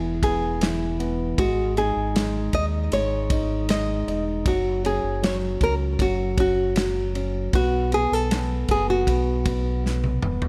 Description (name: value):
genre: pop ballad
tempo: 78 BPM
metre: 4/4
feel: straight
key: unclear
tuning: A4 = 440 Hz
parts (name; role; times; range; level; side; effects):
- dark upright piano; accompaniment; 0.0-10.5 s; E3 to D#4; -31 LUFS; equal; none
- sub bass with octave; bass; 0.0-10.5 s; D#1 to D#2; -29 LUFS; equal; none
- nylon-string guitar; melody; 0.2-10.0 s; F#4 to D#5; -27 LUFS; equal; none
- loose indie drum kit; drums; 0.2-10.5 s; kick drum, ride cymbal, snare drum, toms; -28 LUFS; equal; none
room: light reverb, studio reverb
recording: none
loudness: -23 LUFS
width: mono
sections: 0.0-10.5 A section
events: drum fill 9.8-10.5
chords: 0.0 E; 1.4 G#sus4; 4.5 F#5; 7.5 B